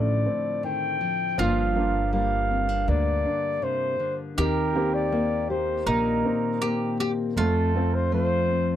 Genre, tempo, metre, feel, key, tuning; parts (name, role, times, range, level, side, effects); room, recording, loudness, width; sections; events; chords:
acoustic folk duo or small band; 80 BPM; 4/4; straight; A4 = 440 Hz
mellow flugelhorn; melody; 0.0-8.8 s; A4 to G5; -27 LUFS; equal
mandolin; second line; 0.0-8.8 s; D4 to G4; -33 LUFS; right 2 dB
nylon-string guitar; accompaniment; 0.0-8.8 s; F2 to G4; -28 LUFS; left 4 dB
bright upright piano; arpeggios; 0.0-8.8 s; Eb3 to G4; -31 LUFS; right 4 dB
upright bass; bass; 0.0-8.8 s; G1 to F2; -27 LUFS; right 1 dB
little or no reverb; dry, close 1970s-style studio recording; -22 LUFS; side -11 dB against mid
0.0-8.8 A section
0.0 Dm7; 1.4 Gm7; 4.4 Eb6; 7.4 F